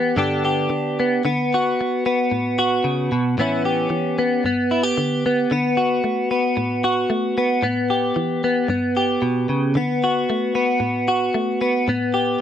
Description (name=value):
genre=highlife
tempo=113 BPM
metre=4/4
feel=straight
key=D major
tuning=A4 = 440 Hz
part: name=direct-recorded clean electric guitar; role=solo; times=0.0-12.4 s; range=G2 to G4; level=-18 LUFS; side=equal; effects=analog chorus
room=light reverb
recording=none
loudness=-18 LUFS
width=side -9 dB against mid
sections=0.0-1.2 A section; 1.2-12.4 A section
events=none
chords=0.2 G; 1.2 D6; 3.4 Aadd9; 4.4 G; 5.5 D6; 7.6 Asus2; 8.7 G; 9.8 D6; 11.9 Asus2